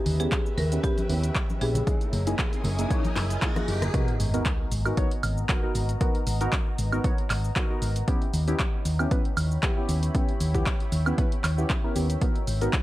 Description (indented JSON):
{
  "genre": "deep house",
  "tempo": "116 BPM",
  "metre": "4/4",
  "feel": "swing 54% on 16ths",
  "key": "G# minor",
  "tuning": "A4 = 440 Hz",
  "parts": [
    { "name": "marimba with hard mallets", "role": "melody", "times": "0.0-3.4 s", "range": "G4 to A#4", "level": "-34 LUFS", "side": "left 1 dB", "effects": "tape echo" },
    { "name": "deep dark ambient pad", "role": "sustained chords", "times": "0.0-12.8 s", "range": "B3 to B5", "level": "-39 LUFS", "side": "equal", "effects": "chorus, built-in reverb, sidechain pumping" },
    { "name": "riser and sub drop", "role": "sound effects", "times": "1.8-6.0 s", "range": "none", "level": "-36 LUFS", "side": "equal", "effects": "none" },
    { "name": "dark symphonic string section", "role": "texture", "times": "0.0-3.9 s", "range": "B3 to D#6", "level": "-40 LUFS", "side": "equal", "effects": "sidechain pumping" },
    { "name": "hollow-body short-scale fingered electric bass", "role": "bass", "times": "0.1-12.7 s", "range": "F#1 to D#2", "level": "-26 LUFS", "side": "equal", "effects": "sidechain pumping" },
    { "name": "punchy analog drum machine", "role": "drums", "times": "0.1-12.8 s", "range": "handclaps, hi-hat, rim click, shaker, woodblock", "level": "-32 LUFS", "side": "right 1 dB", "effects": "overdrive" },
    { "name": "congas and bongos", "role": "percussion", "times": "0.1-3.9 s", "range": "none", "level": "-33 LUFS", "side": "left 1 dB", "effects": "none" },
    { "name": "deep mellow chord stab", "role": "stabs", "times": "0.2-12.7 s", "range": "A#3 to C#5", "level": "-31 LUFS", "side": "equal", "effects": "chorus, sidechain pumping, analog delay" },
    { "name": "electronic kick drum", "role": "drums", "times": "0.3-12.8 s", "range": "none", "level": "-27 LUFS", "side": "equal", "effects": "overdrive" }
  ],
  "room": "digital ambience",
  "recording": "none",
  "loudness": "-23 LUFS",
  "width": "side -16 dB against mid",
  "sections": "0.0-3.9 A section; 3.9-12.8 B section",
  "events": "riser 1.8-3.9; drum fill 3.4-3.9; drop 3.9-12.8; impact 3.9-6.0",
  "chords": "0.0 D#7b9b13; 1.9 F#13; 3.9 G#m9; 8.1 D#7b9b13; 12.2 G#m9",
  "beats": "0.32 0.84 1.35 | 1.87 2.39 2.91 3.42 | 3.94 4.46 4.97 5.49 | 6.01 6.53 7.04 7.56 | 8.08 8.60 9.11 9.63 | 10.15 10.66 11.18 11.70 | 12.22 12.73"
}